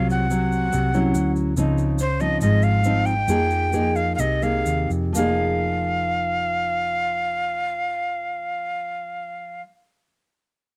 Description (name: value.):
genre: bossa nova.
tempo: 122-143 BPM.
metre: 4/4.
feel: straight.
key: F minor.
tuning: A4 = 440 Hz.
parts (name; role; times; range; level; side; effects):
breathy bright jazz flute; melody; 0.0-9.6 s; C5 to G5; -26 LUFS; equal; none.
nylon-string guitar; accompaniment; 0.0-9.7 s; Ab2 to Ab4; -25 LUFS; equal; cassette tape.
hollow-body short-scale fingered electric bass; bass; 0.0-9.6 s; F1 to F2; -28 LUFS; equal; none.
egg shaker; percussion; 0.1-5.3 s; none; -38 LUFS; equal; none.
room: light reverb.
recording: home recording on cassette.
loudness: -22 LUFS.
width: mono.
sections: 0.0-5.1 A section; 5.1-9.1 B section.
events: slowing down 1.6-5.1.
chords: 0.0 Ab13/C (rootless); 1.1 Dmaj9; 1.6 Dbmaj9; 3.3 Fm11; 5.1 Fm7.